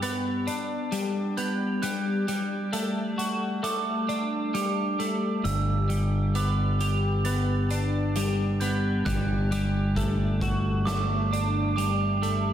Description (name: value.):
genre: post-rock.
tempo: 66 BPM.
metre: 4/4.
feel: straight.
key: G major.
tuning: A4 = 445 Hz.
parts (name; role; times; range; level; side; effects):
glockenspiel with soft plastic mallets; arpeggios; 0.0-12.5 s; D6 to A6; -33 LUFS; right 6 dB; analog delay.
twelve-string electric guitar; arpeggios; 0.0-12.5 s; G2 to G4; -27 LUFS; left 1 dB; analog chorus, analog delay.
huge arena drum kit; drums; 0.0-12.4 s; hi-hat, kick drum, snare drum; -37 LUFS; equal; none.
growling fingered electric bass; bass; 5.5-12.5 s; G1; -26 LUFS; equal; overdrive.
room: wet plate reverb, RT60 2.5 s.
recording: dreamy mix soaked in reverb.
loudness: -24 LUFS.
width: side -10 dB against mid.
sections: 0.0-12.5 A section.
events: none.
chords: 0.0 G; 1.8 D/G; 5.4 G; 9.1 D/G.